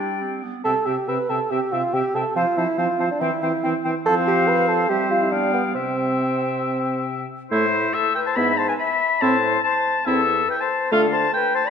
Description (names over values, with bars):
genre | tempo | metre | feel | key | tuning
quick classical-period movement for wind quintet | 141 BPM | 4/4 | straight | C major, A minor from 7.5 s | A4 = 439 Hz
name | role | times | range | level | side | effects
bright concert flute | melody | 0.0-11.7 s | E4 to A5 | -26 LUFS | left 7 dB | none
clear oboe | second line | 0.0-11.7 s | C5 to B5 | -24 LUFS | left 3 dB | none
bright clarinet | accompaniment | 0.0-11.1 s | B3 to F4 | -29 LUFS | right 7 dB | none
mellow French horn | accompaniment | 0.0-11.1 s | C3 to C4 | -27 LUFS | right 1 dB | none
mellow bassoon | bass | 0.0-11.3 s | E2 to B4 | -24 LUFS | right 3 dB | none
room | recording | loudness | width
wet scoring stage reverb, RT60 1.7 s | minimal, uncompressed stereo recording | -18 LUFS | side -7 dB against mid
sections
0.0-7.5 A section; 7.5-11.7 B section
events
none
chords
0.0 G; 0.7 C; 2.4 F; 3.2 C/E; 4.1 F; 4.9 C/G; 5.3 G7; 5.8 C; 7.5 Am; 8.4 E/G#; 9.2 Am; 10.9 Dm